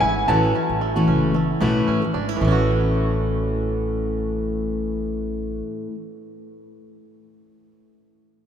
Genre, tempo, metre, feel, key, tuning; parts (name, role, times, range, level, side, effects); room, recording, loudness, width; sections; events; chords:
acoustic pop; 113 BPM; 4/4; swing 55% on 16ths; A major; A4 = 439 Hz
clear upright piano; melody; 0.0-1.8 s; G#5 to A5; -25 LUFS; left 1 dB
fingerpicked steel-string acoustic guitar; accompaniment; 0.0-6.0 s; A2 to F#4; -22 LUFS; left 1 dB
bluegrass banjo; arpeggios; 0.0-5.8 s; E3 to F#4; -30 LUFS; right 6 dB; tape echo
upright bass; bass; 0.0-5.6 s; F#1 to B1; -25 LUFS; right 1 dB
wet cathedral reverb, RT60 5.1 s; in a vast, echoing space; -19 LUFS; side -8 dB against mid
0.0-2.4 A section; 2.4-6.7 B section
0.0 A6